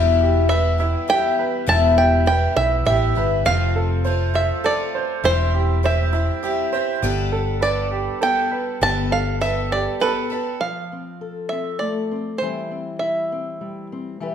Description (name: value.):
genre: folk.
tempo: 101 BPM.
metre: 3/4.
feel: straight.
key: C major.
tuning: A4 = 441 Hz.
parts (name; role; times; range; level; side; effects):
picked twelve-string acoustic guitar; accompaniment; 0.0-10.6 s; E2 to A4; -24 LUFS; left 6 dB; none.
warm upright piano; arpeggios; 0.0-10.6 s; E4 to C5; -25 LUFS; right 5 dB; none.
hollow-body short-scale fingered electric bass; bass; 0.0-9.9 s; E1 to B1; -21 LUFS; equal; none.
bluegrass banjo; melody; 0.5-13.9 s; B4 to A5; -22 LUFS; right 2 dB; none.
fingerpicked old ladder-braced acoustic guitar; accompaniment; 10.6-14.3 s; E3 to B4; -26 LUFS; left 3 dB; none.
room: moderate recital hall reverb, RT60 1.3 s.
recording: recorded in a church or concert hall.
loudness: -18 LUFS.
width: side -8 dB against mid.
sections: 0.0-10.6 A section; 10.6-14.3 B section.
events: none.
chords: 0.0 Em; 3.5 F; 5.2 C/E; 7.0 Gadd9; 10.6 F; 12.4 C/E.